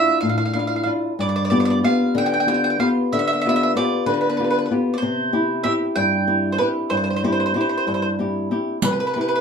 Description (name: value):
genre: italian folk, Italian serenade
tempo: 63 BPM (dotted quarters)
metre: 6/8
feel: straight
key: C major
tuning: A4 = 439 Hz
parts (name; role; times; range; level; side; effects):
- bowl-back mandolin; melody; 0.0-9.4 s; B4 to G5; -21 LUFS; right 3 dB; none
- flamenco guitar; accompaniment; 0.0-9.4 s; G2 to G4; -20 LUFS; left 2 dB; none
- riq; percussion; 8.8-9.1 s; none; -22 LUFS; right 1 dB; none
room: wet small room reverb, RT60 0.5 s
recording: band playing live in one room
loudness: -18 LUFS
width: side -6 dB against mid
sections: 0.0-8.8 A section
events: none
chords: 0.0 Dmadd9; 1.2 G7; 5.0 C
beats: 0.21 | 1.19 2.16 | 3.12 4.06 | 5.00 5.95 | 6.90 7.86 | 8.83